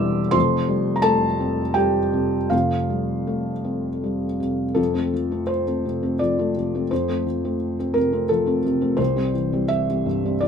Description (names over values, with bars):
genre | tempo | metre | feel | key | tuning
neoclassical minimalist piano | 78-87 BPM | 3/4 | rubato | F major | A4 = 441 Hz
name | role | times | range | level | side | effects
felt-muted upright piano | solo | 0.0-10.5 s | E1 to E6 | -20 LUFS | equal | none
room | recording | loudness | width
light reverb | minimal, uncompressed stereo recording | -20 LUFS | side -7 dB against mid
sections
0.0-4.8 A section; 4.8-10.5 B section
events
none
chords
0.3 Fadd9; 4.8 F; 9.0 C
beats
| 0.34 1.05 1.77 | 2.52 3.29 4.04 | 4.78 5.50 6.20 | 6.90 7.60 8.29 | 8.99 9.70 10.42